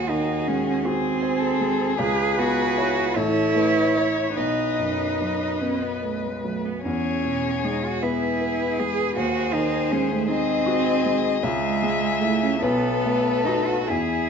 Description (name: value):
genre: classical, slow romantic movement for piano quartet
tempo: 46-54 BPM (dotted quarters)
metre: 6/8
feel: rubato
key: unclear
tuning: A4 = 438 Hz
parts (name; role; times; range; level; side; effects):
- rich violin; melody; 0.0-14.3 s; F#4 to E5; -27 LUFS; left 10 dB; none
- rich cello; second line; 0.0-14.3 s; G#3 to G#4; -24 LUFS; right 6 dB; none
- rich violin; second line; 0.0-14.3 s; G#4 to C#5; -30 LUFS; left 5 dB; none
- warm baby grand piano; accompaniment; 0.0-14.3 s; A1 to C#5; -26 LUFS; left 1 dB; none
room: moderate recital hall reverb, RT60 1.8 s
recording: nothing above 7.7 kHz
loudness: -20 LUFS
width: side -6 dB against mid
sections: 0.0-14.3 A section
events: none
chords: 0.0 G#7/D#; 2.0 C#m7; 3.2 A; 4.4 B; 6.8 E; 9.2 G#7/D#; 11.4 C#m; 12.6 B7